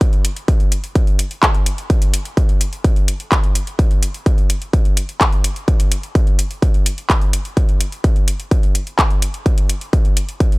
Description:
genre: techno.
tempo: 127 BPM.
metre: 4/4.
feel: straight.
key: none.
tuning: none.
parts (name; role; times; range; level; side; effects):
electronic kick drum; drums; 0.0-10.5 s; none; -14 LUFS; equal; distortion, studio reverb.
techno drum kit; drums; 0.0-10.6 s; handclaps, hi-hat; -20 LUFS; equal; sidechain pumping on hats, studio reverb.
room: digital ambience.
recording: dry, gritty hardware recording.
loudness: -14 LUFS.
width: side -24 dB against mid.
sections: 0.0-10.6 A section.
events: none.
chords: none.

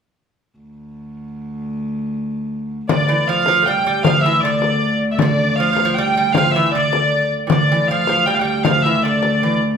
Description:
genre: medieval dance.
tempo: 156 BPM.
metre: 3/4.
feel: straight.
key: D minor.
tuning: A4 = 440 Hz.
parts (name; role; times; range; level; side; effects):
rich viola da gamba; drone; 0.6-9.8 s; D2; -24 LUFS; equal; none.
warm hurdy-gurdy; melody; 2.9-9.6 s; D5 to G5; -17 LUFS; equal; none.
lute; second line; 2.9-9.6 s; D3 to A3; -21 LUFS; right 2 dB; none.
frame drum; percussion; 2.9-9.4 s; none; -20 LUFS; left 3 dB; none.
room: wet large studio reverb, RT60 1.1 s.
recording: band playing live in one room.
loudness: -15 LUFS.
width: side -7 dB against mid.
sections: 0.6-2.9 A section; 2.9-9.8 B section.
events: none.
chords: none.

